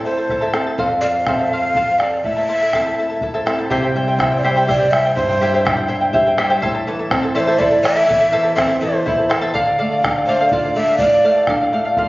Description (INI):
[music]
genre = andean folk, Andean ensemble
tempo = 82 BPM (dotted quarters)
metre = 6/8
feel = straight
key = A minor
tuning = A4 = 441 Hz
[part]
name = breathy large quena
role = melody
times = 0.0-11.5 s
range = C5 to F5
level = -16 LUFS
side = equal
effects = none
[part]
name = charango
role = accompaniment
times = 0.0-12.1 s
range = E4 to A5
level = -19 LUFS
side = equal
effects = none
[part]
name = flamenco guitar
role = accompaniment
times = 0.0-12.1 s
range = E2 to E5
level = -21 LUFS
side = equal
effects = none
[part]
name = bombo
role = percussion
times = 0.3-12.1 s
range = none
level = -23 LUFS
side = equal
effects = none
[sound]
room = moderate studio ambience, RT60 0.5 s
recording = recorded on a phone in the room, studio reverb, nothing above 7.4 kHz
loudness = -14 LUFS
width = side -19 dB against mid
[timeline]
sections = 0.0-3.7 A section; 3.7-12.1 B section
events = nylon-string guitar fill 5.9-6.6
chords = 0.0 Am; 0.8 F; 2.2 Am; 3.7 C; 6.6 Am; 9.5 Dm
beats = 0.06 | 0.79 1.52 | 2.25 2.98 | 3.71 4.44 | 5.17 5.90 | 6.63 7.35 | 8.08 8.81 | 9.54 10.27 | 11.00 11.73